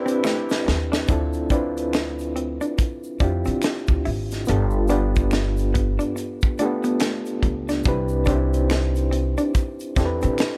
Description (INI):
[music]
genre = R&B, neo-soul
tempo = 71 BPM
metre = 4/4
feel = swing 60% on 16ths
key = unclear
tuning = A4 = 438 Hz
[part]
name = vintage hollow-body jazz guitar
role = second line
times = 0.0-10.4 s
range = A3 to E4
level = -30 LUFS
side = equal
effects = none
[part]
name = overdriven reed electric piano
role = accompaniment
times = 0.0-10.6 s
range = A3 to C5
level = -27 LUFS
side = equal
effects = tremolo
[part]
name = clear horn section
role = stabs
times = 0.0-0.6 s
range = D4 to G4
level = -39 LUFS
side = equal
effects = none
[part]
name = tight funk drum kit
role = drums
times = 0.1-10.6 s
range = hi-hat, kick drum, snare drum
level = -26 LUFS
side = equal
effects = none
[part]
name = tube shaker and finger snaps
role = percussion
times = 0.1-10.6 s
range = none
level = -41 LUFS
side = equal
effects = none
[part]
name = upright bass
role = bass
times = 0.7-10.4 s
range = G1 to D3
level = -26 LUFS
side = equal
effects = none
[sound]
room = little or no reverb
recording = none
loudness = -22 LUFS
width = mono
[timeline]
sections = 0.0-1.1 A section; 1.1-10.6 B section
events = drum fill 0.2-1.1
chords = 0.0 Am11; 1.1 Dm7; 4.5 G7; 7.9 Cmaj7